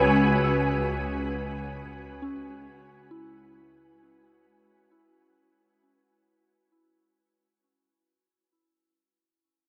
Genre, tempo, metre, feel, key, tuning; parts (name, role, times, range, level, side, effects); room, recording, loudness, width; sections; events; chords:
ambient; free time; C# minor; A4 = 440 Hz
soft additive organ-like pad; sustained chords; 0.0-3.9 s; G#3 to B4; -28 LUFS; equal; ensemble chorus, built-in reverb, shimmer reverb
soft synth bell; arpeggios; 0.0-7.2 s; C#4 to E6; -42 LUFS; equal; chorus, phaser, delay, shimmer reverb
clear chamber double bass section; bass; 0.0-3.8 s; C#2; -33 LUFS; equal; tube saturation
wind-like tuned noise texture; texture; 0.0-3.9 s; G#5; -33 LUFS; equal; built-in reverb, shimmer reverb
wet huge ambient reverb, RT60 7.7 s; in a vast, echoing space; -27 LUFS; mono
0.0-3.9 A section
fade-out 0.0-3.9
0.0 C#m7